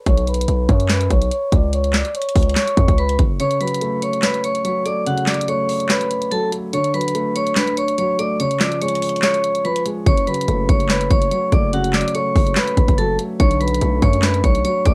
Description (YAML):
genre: hip hop, trap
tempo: 144 BPM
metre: 4/4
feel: half-time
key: F# harmonic minor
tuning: A4 = 441 Hz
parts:
  - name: vibraphone with hard mallets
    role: melody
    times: 0.1-14.9 s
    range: F#4 to D6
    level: -23 LUFS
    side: equal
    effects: low-pass filter
  - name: distorted 808-style bass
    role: bass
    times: 0.1-3.4, 10.1-14.9 s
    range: F#1 to F#2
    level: -22 LUFS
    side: equal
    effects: distortion
  - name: trap drum kit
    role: drums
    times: 0.1-14.9 s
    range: handclaps, hi-hat, kick drum, snare drum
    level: -21 LUFS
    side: equal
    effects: cassette tape
  - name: dark concert grand piano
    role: accompaniment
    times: 3.4-14.9 s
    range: C#3 to C#5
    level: -26 LUFS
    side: equal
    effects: low-pass filter, cassette tape
room: little or no reverb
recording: home recording on cassette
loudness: -18 LUFS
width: mono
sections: 0.0-14.9 A section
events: filter sweep 0.0-3.4; break 3.4-10.1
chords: 0.1 B5; 1.7 N.C.; 3.4 F#m; 6.7 Bm7; 8.4 C#; 10.1 F#m; 13.4 Bm7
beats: | 0.07 0.48 0.90 1.31 | 1.73 2.15 2.56 2.98 | 3.40 3.81 4.23 4.65 | 5.07 5.48 5.90 6.32 | 6.73 7.15 7.57 7.98 | 8.40 8.81 9.23 9.65 | 10.06 10.48 10.90 11.31 | 11.73 12.15 12.56 12.98 | 13.40 13.81 14.23 14.65